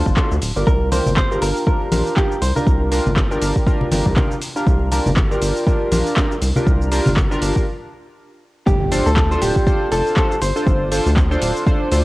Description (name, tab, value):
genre	deep house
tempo	120 BPM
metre	4/4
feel	swing 58% on 16ths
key	unclear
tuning	A4 = 440 Hz
part	chorused polysynth	stabs	0.0-12.0 s	D4 to C5	-22 LUFS	equal	sidechain pumping
part	rubbery square bass	bass	0.0-12.0 s	D1 to D2	-20 LUFS	equal	tube saturation, sidechain pumping
part	deep house drum kit	drums	0.1-12.0 s	cabasa, handclaps, hi-hat	-26 LUFS	equal	overdrive, cassette tape
part	electronic kick drum	drums	0.1-11.8 s	none	-17 LUFS	equal	overdrive, cassette tape
part	vintage hollow-body jazz guitar	melody	0.7-4.4, 8.7-10.9 s	G4 to C5	-24 LUFS	equal	vintage 12-bit sampler grit, tape echo
part	congas	percussion	0.9-7.1 s	none	-23 LUFS	left 1 dB	none
part	impact	sound effects	8.7-10.7 s	none	-29 LUFS	equal	none
room	little or no reverb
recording	home recording on cassette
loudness	-15 LUFS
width	side -19 dB against mid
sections	0.0-8.7 A section; 8.7-12.0 B section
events	break 7.7-8.7; drop 8.7-12.0; impact 8.7-10.7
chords	0.0 C9sus4; 8.7 G9sus4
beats	0.17 | 0.67 1.17 1.67 2.17 | 2.67 3.17 3.67 4.17 | 4.67 5.17 5.67 6.17 | 6.67 7.17 7.67 8.17 | 8.67 9.17 9.67 10.17 | 10.67 11.17 11.67